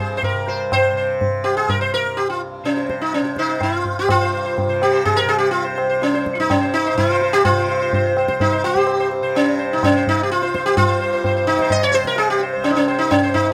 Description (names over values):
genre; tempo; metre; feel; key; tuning
indian classical, Hindustani; 126 BPM; 7/4; straight; C raga bhairavi; A4 = 439 Hz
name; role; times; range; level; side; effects
sitar; melody; 0.0-13.5 s; Db4 to Eb5; -19 LUFS; equal; none
tanpura; drone; 0.0-13.5 s; C2 to C3; -30 LUFS; equal; none
tabla; percussion; 0.2-13.5 s; none; -25 LUFS; equal; none
room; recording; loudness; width
light reverb; none; -18 LUFS; mono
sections
0.0-4.1 A section; 4.1-13.5 B section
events
speeding up 0.0-13.5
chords
none